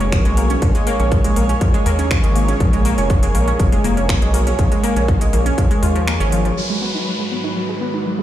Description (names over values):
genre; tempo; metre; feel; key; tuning
melodic techno; 121 BPM; 4/4; straight; unclear; A4 = 441 Hz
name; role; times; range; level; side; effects
lush unison pad; sustained chords; 0.0-8.2 s; G#2 to C#5; -24 LUFS; right 2 dB; chorus, sidechain pumping
analog pluck; arpeggios; 0.0-8.2 s; E#3 to E#4; -21 LUFS; left 1 dB; chorus, sidechain pumping, ping-pong delay
gritty driven synth bass; bass; 0.0-6.5 s; E#1 to D#2; -19 LUFS; equal; sidechain pumping
techno drum kit; drums; 0.0-6.5 s; finger snaps, hi-hat; -28 LUFS; right 1 dB; sidechain pumping on hats, low-pass filter on hats, low-pass filter on snare
electronic kick drum; drums; 0.1-5.7 s; none; -17 LUFS; equal; none
bowed-like drone; drone; 7.0-8.2 s; G#2 to D#3; -30 LUFS; right 5 dB; built-in reverb, sidechain pumping
downlifter; sound effects; 6.6-8.2 s; none; -25 LUFS; equal; none
room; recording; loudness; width
light reverb; played on a big sound system in a bare room, large studio reverb; -14 LUFS; side -12 dB against mid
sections
0.0-6.6 A section; 6.6-8.2 B section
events
kick drops out 6.1-6.6; filter sweep on synth pluck 6.6-8.2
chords
0.0 A#m7; 6.6 G#m7